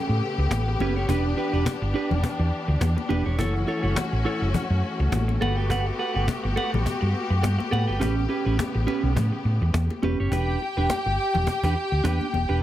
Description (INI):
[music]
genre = disco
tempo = 104 BPM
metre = 4/4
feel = swing 56% on 16ths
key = E dorian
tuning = A4 = 439 Hz
[part]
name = clear studio string section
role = sustained chords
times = 0.0-10.3 s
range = C#3 to G4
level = -30 LUFS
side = left 3 dB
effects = none
[part]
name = clean electric guitar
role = accompaniment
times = 0.1-12.6 s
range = C#4 to G5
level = -29 LUFS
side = right 4 dB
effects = none
[part]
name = hollow-body short-scale fingered electric bass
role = bass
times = 0.1-12.6 s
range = E1 to A2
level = -24 LUFS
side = equal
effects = none
[part]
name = cajon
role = drums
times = 0.1-12.6 s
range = none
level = -29 LUFS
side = equal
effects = none
[part]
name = congas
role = percussion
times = 0.5-12.5 s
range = none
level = -32 LUFS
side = left 5 dB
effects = none
[part]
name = warm symphonic violin section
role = second line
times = 10.3-12.6 s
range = G4 to G5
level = -26 LUFS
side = left 1 dB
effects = none
[sound]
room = light reverb, small room ambience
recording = none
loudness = -22 LUFS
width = side -13 dB against mid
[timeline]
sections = 0.0-10.3 A section; 10.3-12.6 B section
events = none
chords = 0.0 A9; 1.1 Em7; 3.4 F#m7; 5.4 Gmaj9; 8.0 A9; 10.3 Em7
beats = 0.51 | 1.09 1.66 2.24 2.82 | 3.40 3.97 4.55 5.12 | 5.70 6.28 6.86 7.43 | 8.01 8.59 9.16 9.74 | 10.31 10.89 11.47 12.04 | 12.62